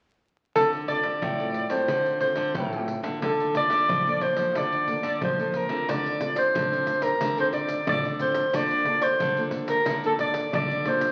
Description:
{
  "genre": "samba and choro",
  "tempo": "90 BPM",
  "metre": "4/4",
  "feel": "straight",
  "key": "D minor",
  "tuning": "A4 = 444 Hz",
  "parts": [
    { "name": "warm soprano saxophone", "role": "melody", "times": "0.6-11.1 s", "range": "A4 to D5", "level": "-26 LUFS", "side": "equal", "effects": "none" },
    { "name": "nylon-string guitar", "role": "accompaniment", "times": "0.6-11.1 s", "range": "A2 to A4", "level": "-37 LUFS", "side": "equal", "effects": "none" },
    { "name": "nylon-string guitar", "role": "bass", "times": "0.6-11.1 s", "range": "A2 to F3", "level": "-35 LUFS", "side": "equal", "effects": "none" },
    { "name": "surdo, pandeiro and maracas", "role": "percussion", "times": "0.6-11.1 s", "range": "none", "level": "-36 LUFS", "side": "equal", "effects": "none" }
  ],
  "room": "wet large studio reverb, RT60 1.5 s",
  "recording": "very old 78 rpm record, vinyl crackle",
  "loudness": "-25 LUFS",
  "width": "mono",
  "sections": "0.6-5.9 A section; 5.9-11.1 B section",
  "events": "none",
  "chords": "0.6 Dm7; 3.2 Bbmaj7/D; 5.9 Dm7; 8.5 Bbmaj7/D"
}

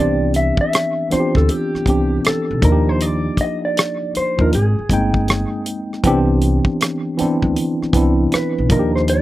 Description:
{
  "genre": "R&B, neo-soul",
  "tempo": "79 BPM",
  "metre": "4/4",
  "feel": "swing 64% on 16ths",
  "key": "C major",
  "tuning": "A4 = 441 Hz",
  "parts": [
    { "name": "mellow electric guitar", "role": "melody", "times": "0.0-9.2 s", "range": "G4 to E5", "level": "-21 LUFS", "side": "equal", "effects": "slapback echo" },
    { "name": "tine electric piano", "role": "accompaniment", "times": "0.0-9.2 s", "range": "E3 to G5", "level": "-18 LUFS", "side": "equal", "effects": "overdrive, fast stereo tremolo" },
    { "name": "upright bass", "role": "bass", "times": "0.0-9.2 s", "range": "G1 to Eb2", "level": "-18 LUFS", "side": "equal", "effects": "none" },
    { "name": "damped 70s drum kit", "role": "drums", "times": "0.3-9.2 s", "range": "hi-hat, kick drum, rim click", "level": "-19 LUFS", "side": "equal", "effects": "none" }
  ],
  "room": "little or no reverb",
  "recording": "recorded outdoors, with no room sound",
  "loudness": "-15 LUFS",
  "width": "side -16 dB against mid",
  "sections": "0.0-9.2 A section",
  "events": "none",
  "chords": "0.0 Cmaj9; 2.6 Ebmaj9; 4.5 Abmaj9; 6.0 Cmaj9; 8.7 Ebmaj9"
}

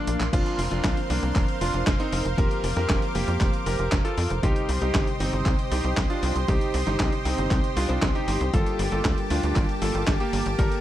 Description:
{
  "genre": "italo disco",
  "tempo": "117 BPM",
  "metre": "4/4",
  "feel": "straight",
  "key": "unclear",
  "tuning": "A4 = 440 Hz",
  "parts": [
    { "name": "clear electric grand piano", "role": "melody", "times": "0.0-10.8 s", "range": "Bb3 to Bb4", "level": "-29 LUFS", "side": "right 1 dB", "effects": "ping-pong delay" },
    { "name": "lush unison pad", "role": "sustained chords", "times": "0.0-10.8 s", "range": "Bb3 to D6", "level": "-30 LUFS", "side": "right 1 dB", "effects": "chorus" },
    { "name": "direct-recorded clean electric guitar", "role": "stabs", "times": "0.0-10.8 s", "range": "G2 to C5", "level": "-35 LUFS", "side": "left 3 dB", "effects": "none" },
    { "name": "tight sequencer bass", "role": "bass", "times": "0.1-10.7 s", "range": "F1 to F2", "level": "-27 LUFS", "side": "equal", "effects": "none" },
    { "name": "dusty soul sampler-style drum kit", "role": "drums", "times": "0.1-10.8 s", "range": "crash cymbal, handclaps, hi-hat, snare drum", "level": "-31 LUFS", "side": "equal", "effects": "none" },
    { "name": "electronic kick drum", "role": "drums", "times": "0.3-10.7 s", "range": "none", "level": "-25 LUFS", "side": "equal", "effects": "none" }
  ],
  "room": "little or no reverb",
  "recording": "dark, warm production",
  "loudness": "-22 LUFS",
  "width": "side -13 dB against mid",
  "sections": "0.3-10.8 A section",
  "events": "drum fill 0.0-0.3",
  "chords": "0.3 Fsus4; 4.4 Cm; 8.5 Gmadd9"
}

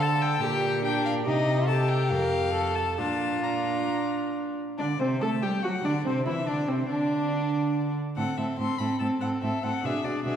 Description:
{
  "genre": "quick classical-period movement for string quartet",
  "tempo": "142 BPM",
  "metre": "4/4",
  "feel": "rubato",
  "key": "Bb major, G major from 4.8 s",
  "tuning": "A4 = 440 Hz",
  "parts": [
    { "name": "rich violin", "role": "melody", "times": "0.0-10.4 s", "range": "C5 to C6", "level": "-32 LUFS", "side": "left 5 dB", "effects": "none" },
    { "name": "rich violin", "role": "second line", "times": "0.0-10.4 s", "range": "C4 to A4", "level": "-30 LUFS", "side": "left 2 dB", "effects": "none" },
    { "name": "warm viola", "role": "accompaniment", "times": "0.0-10.4 s", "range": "C4 to Bb4", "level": "-30 LUFS", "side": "right 2 dB", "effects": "none" },
    { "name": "rich cello", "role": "bass", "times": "0.0-10.3 s", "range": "F2 to A3", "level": "-30 LUFS", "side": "right 2 dB", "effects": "none" }
  ],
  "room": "wet concert hall reverb, RT60 2.0 s",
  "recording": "heard from further back in the room",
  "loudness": "-24 LUFS",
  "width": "side -9 dB against mid",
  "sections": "0.0-4.8 A section; 4.8-10.4 B section",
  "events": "none",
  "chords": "0.4 Gm/Bb; 1.3 Cm; 2.1 Bb5/F; 2.5 F; 3.0 Bb; 4.8 G5; 6.5 Csus2; 7.3 N.C.; 8.2 Am; 9.8 E7/B"
}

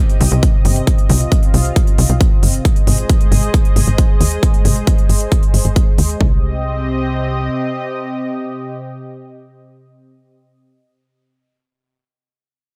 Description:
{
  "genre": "uplifting trance",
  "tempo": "135 BPM",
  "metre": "4/4",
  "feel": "straight",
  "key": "C minor",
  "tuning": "A4 = 440 Hz",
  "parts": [
    { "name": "lush unison pad", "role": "sustained chords", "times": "0.0-10.3 s", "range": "C3 to Eb5", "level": "-25 LUFS", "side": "equal", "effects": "chorus, sidechain pumping" },
    { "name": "big-room dance drum kit", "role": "drums", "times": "0.1-6.2 s", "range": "hi-hat, toms", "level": "-24 LUFS", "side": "equal", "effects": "studio reverb" },
    { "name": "tight sequencer bass", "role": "bass", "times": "0.2-7.5 s", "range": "G1 to Eb2", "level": "-18 LUFS", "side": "equal", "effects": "sidechain pumping" },
    { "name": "electronic kick drum", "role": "drums", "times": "0.4-6.3 s", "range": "none", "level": "-15 LUFS", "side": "equal", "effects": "studio reverb" }
  ],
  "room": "little or no reverb",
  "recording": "none",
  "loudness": "-15 LUFS",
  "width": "mono",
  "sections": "0.0-6.2 A section; 6.2-9.8 B section",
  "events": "filter sweep on analog synth bass 0.0-6.2",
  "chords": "0.0 Cm; 2.7 Ab; 6.2 Cm"
}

